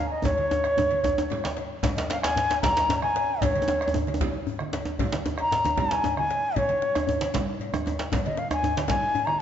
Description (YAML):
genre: west african traditional, West African drum ensemble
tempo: 153 BPM (dotted quarters)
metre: 12/8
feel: straight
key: Db major pentatonic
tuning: A4 = 440 Hz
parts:
  - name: reedy bansuri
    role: melody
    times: 0.0-9.4 s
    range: Db5 to Bb5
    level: -25 LUFS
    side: left 1 dB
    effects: none
  - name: bombo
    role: percussion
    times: 0.2-9.4 s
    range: none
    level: -34 LUFS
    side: equal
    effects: none
  - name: cowbell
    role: percussion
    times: 0.2-9.3 s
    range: none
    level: -38 LUFS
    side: left 3 dB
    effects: none
  - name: djembe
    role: percussion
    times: 0.2-9.3 s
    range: none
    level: -34 LUFS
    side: left 6 dB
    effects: none
  - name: congas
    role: percussion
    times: 0.3-9.4 s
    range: none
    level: -34 LUFS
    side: right 5 dB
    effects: none
  - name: djembe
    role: percussion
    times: 0.3-9.0 s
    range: none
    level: -30 LUFS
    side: right 2 dB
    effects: none
room: moderate concert hall reverb, RT60 2.3 s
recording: nothing above 7.7 kHz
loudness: -23 LUFS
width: side -9 dB against mid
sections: 0.0-1.8 A section; 1.8-9.4 B section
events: speeding up 0.0-9.4; drum fill 0.2-1.8, 7.6-8.1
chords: none